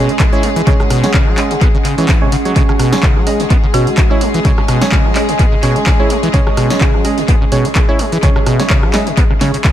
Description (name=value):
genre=acid house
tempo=127 BPM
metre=4/4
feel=swing 55% on 16ths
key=C# minor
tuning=A4 = 442 Hz
part: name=rich studio string section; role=sustained chords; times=0.0-9.7 s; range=G#3 to G#4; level=-22 LUFS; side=left 1 dB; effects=sidechain pumping
part: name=acid bass, saw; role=riff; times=0.0-9.7 s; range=B2 to E4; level=-18 LUFS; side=equal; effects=tube saturation, dub echo
part: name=percussive organ stab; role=stabs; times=0.0-9.6 s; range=G#3 to D#5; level=-20 LUFS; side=right 4 dB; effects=chorus, tape echo
part: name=warbly tape-like pad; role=texture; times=0.0-9.7 s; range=C#4 to F#5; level=-22 LUFS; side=equal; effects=chorus, built-in reverb, sidechain pumping
part: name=punchy analog drum machine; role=drums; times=0.1-9.7 s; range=handclaps, hi-hat, rim click, snare drum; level=-19 LUFS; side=equal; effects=tape echo
part: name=electronic kick drum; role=drums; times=0.2-9.7 s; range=none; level=-13 LUFS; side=equal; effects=none
part: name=folk marimba with medium hard mallets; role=melody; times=3.7-4.1 s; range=F#4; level=-22 LUFS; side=equal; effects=analog delay
room=light reverb, digital ambience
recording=echo-heavy mix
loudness=-10 LUFS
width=side -11 dB against mid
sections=0.0-9.7 A section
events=none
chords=0.0 C#5